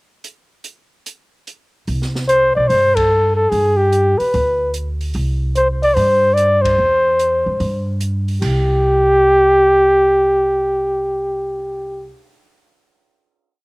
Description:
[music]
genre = jazz, small-group swing and bop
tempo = 147 BPM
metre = 4/4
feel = swing 67% on 8ths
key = C major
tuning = A4 = 440 Hz
[part]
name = open jazz drum kit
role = drums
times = 0.2-11.6 s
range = crash cymbal, cymbal swell, hi-hat, kick drum, ride cymbal, snare drum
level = -30 LUFS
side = right 1 dB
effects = none
[part]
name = upright bass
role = bass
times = 1.9-12.1 s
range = B1 to G2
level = -20 LUFS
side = equal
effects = none
[part]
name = mellow flugelhorn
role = melody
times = 2.3-12.1 s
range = G4 to D5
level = -13 LUFS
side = equal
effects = slapback echo
[sound]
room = light reverb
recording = recorded outdoors, with no room sound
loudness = -13 LUFS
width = side -26 dB against mid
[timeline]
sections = 0.2-1.9 pickup bar; 1.9-8.4 A section; 8.4-11.7 final chord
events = band accent 2.9, 6.6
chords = 0.2 N.C.; 1.9 C5; 3.5 G; 5.1 C; 8.4 C5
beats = | 0.24 0.65 1.06 1.47 | 1.88 2.29 2.70 3.10 | 3.51 3.92 4.33 4.74 | 5.15 5.56 5.97 6.37 | 6.78 7.19 7.60 8.01 | 8.42 8.83 9.24 9.65 | 10.05 10.46 10.88 11.29

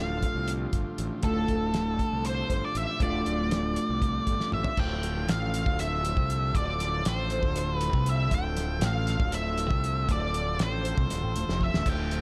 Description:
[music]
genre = psychedelic rock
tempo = 237 BPM (eighths)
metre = 7/8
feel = straight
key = D minor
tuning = A4 = 440 Hz
[part]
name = octave-fuzz lead guitar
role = melody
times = 0.0-12.2 s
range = A4 to G5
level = -34 LUFS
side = equal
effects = wah, distortion, analog delay
[part]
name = overdriven combo organ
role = sustained chords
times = 0.0-12.2 s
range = D3 to A4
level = -41 LUFS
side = equal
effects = none
[part]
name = mellow electric guitar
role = riff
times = 0.0-12.2 s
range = D2 to F4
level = -34 LUFS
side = equal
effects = phaser
[part]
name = fuzz fingered electric bass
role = bass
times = 0.0-12.2 s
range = D1 to C2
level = -34 LUFS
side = equal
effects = overdrive
[part]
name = cloth-damped thuddy drum kit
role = drums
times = 0.2-12.2 s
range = crash cymbal, hi-hat, kick drum, snare drum, toms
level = -33 LUFS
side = equal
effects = none
[sound]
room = little or no reverb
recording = none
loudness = -28 LUFS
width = mono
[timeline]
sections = 0.0-4.8 A section; 4.8-12.2 B section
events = drum fill 4.4-4.8, 11.5-11.9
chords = 0.0 Dm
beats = 0.23 0.48 0.73 0.98 | 1.24 1.49 1.74 2.00 2.25 2.50 2.75 | 3.01 3.26 3.51 3.77 4.02 4.27 4.52 | 4.78 5.03 5.28 5.54 5.79 6.04 6.29 | 6.55 6.80 7.05 7.30 7.56 7.81 8.06 | 8.32 8.57 8.82 9.08 9.33 9.58 9.84 | 10.09 10.34 10.60 10.85 11.10 11.36 11.61 | 11.86 12.12

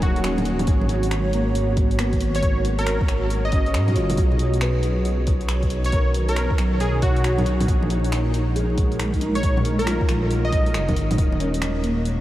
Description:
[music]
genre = future garage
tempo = 137 BPM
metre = 4/4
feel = swing 64% on 16ths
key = unclear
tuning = A4 = 440 Hz
[part]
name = plucky unison lead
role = melody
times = 0.0-10.9 s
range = Gb4 to Eb5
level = -29 LUFS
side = equal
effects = diffuse ambient delay
[part]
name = felt-muted upright piano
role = accompaniment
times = 0.0-12.2 s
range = Bb3 to C#5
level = -29 LUFS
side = left 1 dB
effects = vintage 12-bit sampler grit, sidechain pumping, tape echo
[part]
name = granular cloud pad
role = sustained chords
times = 0.0-12.2 s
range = Gb3 to F5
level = -28 LUFS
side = right 1 dB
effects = built-in reverb, sidechain pumping
[part]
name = dark detuned saw bass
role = bass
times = 0.0-12.2 s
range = Eb1 to Ab2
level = -23 LUFS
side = equal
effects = tube saturation, sidechain pumping
[part]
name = deep house drum kit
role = drums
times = 0.0-12.2 s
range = bongos, finger snaps, hi-hat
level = -30 LUFS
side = equal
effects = overdrive
[part]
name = electronic kick drum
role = drums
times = 0.0-11.3 s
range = none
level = -22 LUFS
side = equal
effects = overdrive
[part]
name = drifting glass-harmonics texture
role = texture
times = 1.3-12.2 s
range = Gb3 to Gb4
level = -35 LUFS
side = right 4 dB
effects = none
[sound]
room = moderate huge ambient reverb, RT60 7.8 s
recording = dreamy mix soaked in reverb, vinyl crackle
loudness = -19 LUFS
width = side -14 dB against mid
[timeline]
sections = 0.0-12.2 A section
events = none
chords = 0.0 Ebm7; 0.7 Abm11; 4.2 Bmaj9; 7.7 Gb69/Bb; 11.2 Ebm9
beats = 0.24 | 0.68 1.11 1.55 1.99 | 2.43 2.87 3.30 3.74 | 4.18 4.62 5.06 5.49 | 5.93 6.37 6.81 7.25 | 7.68 8.12 8.56 9.00 | 9.44 9.87 10.31 10.75 | 11.19 11.62 12.06

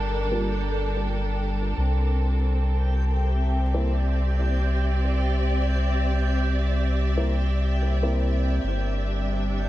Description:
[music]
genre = ambient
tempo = free time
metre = none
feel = none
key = unclear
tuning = A4 = 439 Hz
[part]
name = dark symphonic string section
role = sustained chords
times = 0.0-9.7 s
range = G3 to E5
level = -29 LUFS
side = right 1 dB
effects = vintage 12-bit sampler grit
[part]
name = soft dub sub bass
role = bass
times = 0.0-9.7 s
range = G1 to C2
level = -23 LUFS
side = equal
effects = none
[part]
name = backwards swelling texture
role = texture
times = 0.0-9.7 s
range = G5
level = -36 LUFS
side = equal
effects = built-in reverb
[part]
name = dark upright piano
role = stabs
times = 0.3-8.6 s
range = G3 to F4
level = -33 LUFS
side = equal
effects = low-pass filter, dub echo
[sound]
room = small room ambience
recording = vinyl crackle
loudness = -22 LUFS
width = side -15 dB against mid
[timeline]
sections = 0.0-9.7 A section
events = none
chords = 0.0 Gm; 1.8 C7; 8.6 G5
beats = free time

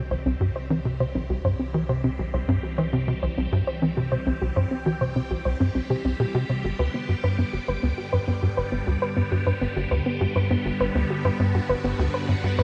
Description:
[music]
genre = ambient, sequencer-driven space music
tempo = 101 BPM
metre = 4/4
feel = straight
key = C lydian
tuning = A4 = 440 Hz
[part]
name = phased string machine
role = sustained chords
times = 0.0-12.6 s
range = D3 to G4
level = -34 LUFS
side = equal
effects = ensemble chorus, phaser, shimmer reverb
[part]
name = soft round pluck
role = arpeggios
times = 0.0-12.6 s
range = B3 to C5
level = -31 LUFS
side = equal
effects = chorus, delay, shimmer reverb
[part]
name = analog drone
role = bass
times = 0.0-12.6 s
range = C2 to G2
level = -37 LUFS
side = equal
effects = chorus
[part]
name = tight sequencer bass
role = riff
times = 0.1-12.6 s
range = G1 to E3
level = -27 LUFS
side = equal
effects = subtle chorus, delay
[sound]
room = moderate plate reverb, RT60 3.1 s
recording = none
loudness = -25 LUFS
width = mono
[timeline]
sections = 0.0-12.6 A section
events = fade-in on string machine 0.0-12.6; filter sweep on synth arpeggio sound 0.0-12.6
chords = 0.0 C; 6.6 G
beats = 0.11 0.70 1.30 | 1.89 2.48 3.08 3.67 | 4.27 4.86 5.46 6.05 | 6.64 7.24 7.83 8.43 | 9.02 9.61 10.21 10.80 | 11.40 11.99 12.58

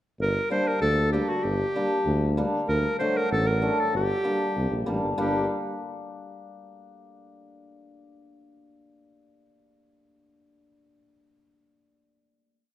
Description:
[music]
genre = klezmer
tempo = 96 BPM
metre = 2/4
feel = straight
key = G harmonic minor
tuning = A4 = 440 Hz
[part]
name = bright clarinet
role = melody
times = 0.2-5.5 s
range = F#4 to C5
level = -27 LUFS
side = equal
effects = none
[part]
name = warm tuba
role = bass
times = 0.2-5.5 s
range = G1 to D2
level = -28 LUFS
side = equal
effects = none
[part]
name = hammered dulcimer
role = accompaniment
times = 0.5-5.5 s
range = F#3 to D4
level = -29 LUFS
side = left 1 dB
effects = none
[sound]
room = wet recital hall reverb, RT60 1.7 s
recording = dark, warm production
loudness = -23 LUFS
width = side -13 dB against mid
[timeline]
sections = 0.2-5.2 A section; 5.2-6.4 final chord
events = none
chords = 0.2 Gm; 2.7 D; 3.9 Gm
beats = | 0.20 0.82 | 1.45 2.07 | 2.69 3.32 | 3.94 4.56 | 5.18

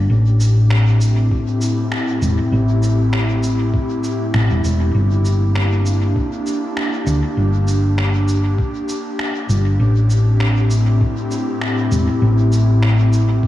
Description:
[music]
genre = ambient dub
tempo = 99 BPM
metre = 4/4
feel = swing 55% on 16ths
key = unclear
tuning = A4 = 438 Hz
[part]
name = airy breathy pad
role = sustained chords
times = 0.0-13.5 s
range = A2 to G4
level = -20 LUFS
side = left 1 dB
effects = chorus, vintage 12-bit sampler grit
[part]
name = hollow-body short-scale fingered electric bass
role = bass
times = 0.0-13.4 s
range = E1 to D2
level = -15 LUFS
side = equal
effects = none
[part]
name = electronic shaker and finger snaps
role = drums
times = 0.4-13.3 s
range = none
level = -28 LUFS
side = equal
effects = dub echo
[part]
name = electronic kick drum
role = drums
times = 1.3-13.5 s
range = none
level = -20 LUFS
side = equal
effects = none
[sound]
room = moderate lush hall reverb, RT60 2.1 s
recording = dreamy mix soaked in reverb, small room ambience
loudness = -14 LUFS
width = side -14 dB against mid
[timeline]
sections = 0.0-13.5 A section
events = none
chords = 0.1 Am7; 4.9 Gm; 9.8 Am7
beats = | 0.10 0.71 1.31 1.92 | 2.52 3.13 3.74 4.34 | 4.95 5.55 6.16 6.77 | 7.37 7.98 8.59 9.19 | 9.80 10.40 11.01 11.62 | 12.22 12.83 13.43

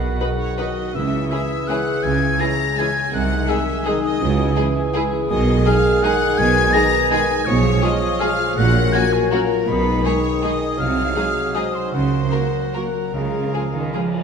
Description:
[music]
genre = classical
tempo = 144-178 BPM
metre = 3/4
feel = rubato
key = unclear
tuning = A4 = 440 Hz
[part]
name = concert flute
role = second line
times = 0.0-14.1 s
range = G#5 to A#6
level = -24 LUFS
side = left 2 dB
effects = none
[part]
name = mellow cor anglais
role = second line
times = 0.0-14.1 s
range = C#5 to G#5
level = -31 LUFS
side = right 1 dB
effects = none
[part]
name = rich symphonic violin section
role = second line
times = 0.0-14.1 s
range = G#4 to A#5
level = -30 LUFS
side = left 3 dB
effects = none
[part]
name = warm clarinet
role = second line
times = 0.0-14.1 s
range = F#4 to A#4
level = -29 LUFS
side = left 1 dB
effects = none
[part]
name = mellow bassoon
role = accompaniment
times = 0.0-14.1 s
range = D#3 to G#3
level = -27 LUFS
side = right 5 dB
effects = none
[part]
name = dark French horn section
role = sustained chords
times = 0.0-14.1 s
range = D#4 to B#4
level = -26 LUFS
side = left 4 dB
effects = none
[part]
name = concert harp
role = arpeggios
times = 0.0-14.2 s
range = A#2 to B5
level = -28 LUFS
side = left 9 dB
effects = none
[part]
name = rich symphonic cello section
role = bass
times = 0.0-14.2 s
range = A#2 to E#3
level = -24 LUFS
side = right 4 dB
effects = none
[part]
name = rich symphonic double bass section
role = bass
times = 0.0-13.5 s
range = A#1 to C#2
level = -24 LUFS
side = right 2 dB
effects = none
[part]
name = warm symphonic violin section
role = melody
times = 0.2-14.0 s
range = F#4 to B4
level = -28 LUFS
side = left 3 dB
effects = none
[part]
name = rich symphonic viola section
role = accompaniment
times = 0.2-14.0 s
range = F#3 to F#4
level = -32 LUFS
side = right 1 dB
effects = none
[part]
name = clear trombone section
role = sustained chords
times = 0.2-14.1 s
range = D#3 to A#3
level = -32 LUFS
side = right 2 dB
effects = none
[sound]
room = wet scoring stage reverb, RT60 1.8 s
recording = none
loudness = -16 LUFS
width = side -6 dB against mid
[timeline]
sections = 0.0-14.2 A section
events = none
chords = 0.0 B; 0.9 C#m; 3.1 G#7/B#; 4.2 C#m; 5.3 G#m/B; 7.5 C#7/B; 8.6 F#/A#; 9.7 G#m/B; 10.8 G#7/B#; 11.9 F#/C#; 13.1 C#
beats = 0.21 0.59 | 0.95 1.31 1.69 | 2.04 2.40 2.78 | 3.13 3.48 3.86 | 4.21 4.57 4.95 | 5.30 5.66 6.03 | 6.39 6.75 7.12 | 7.48 7.84 8.22 | 8.58 8.94 9.33 | 9.69 10.05 10.43 | 10.79 11.16 11.55 | 11.94 12.34 12.76 | 13.15 13.54 13.94

